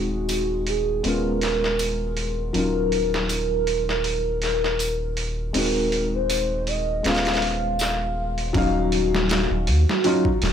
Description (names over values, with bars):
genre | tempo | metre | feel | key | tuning
trip hop | 80 BPM | 4/4 | swing 55% on 16ths | Eb minor | A4 = 440 Hz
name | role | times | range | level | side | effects
pure breathy sine lead | melody | 0.0-10.5 s | Gb4 to F5 | -25 LUFS | right 1 dB | wide subtle chorus, dub echo
felt-muted upright piano | accompaniment | 0.0-10.3 s | Gb3 to F5 | -26 LUFS | left 2 dB | harmonic tremolo, tape echo
soft dub sub bass | bass | 0.0-10.5 s | Eb1 to Eb2 | -27 LUFS | equal | none
trip hop sampler-style drum kit | drums | 0.3-10.5 s | hi-hat, kick drum, snare drum | -26 LUFS | right 1 dB | high-pass filter on hats, high-pass filter on snare, high-pass filter on kick, high-pass filter on room
tambourine | percussion | 0.3-8.0 s | none | -33 LUFS | left 1 dB | none
room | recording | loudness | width
light reverb, digital ambience | none | -20 LUFS | side -8 dB against mid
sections
0.0-8.5 A section; 8.5-10.5 B section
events
none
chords
0.0 Ab7/Eb; 1.0 Db7/Eb; 2.5 Ebm9; 5.5 Ab7/Eb; 7.0 Db7/Eb; 8.5 Ebm9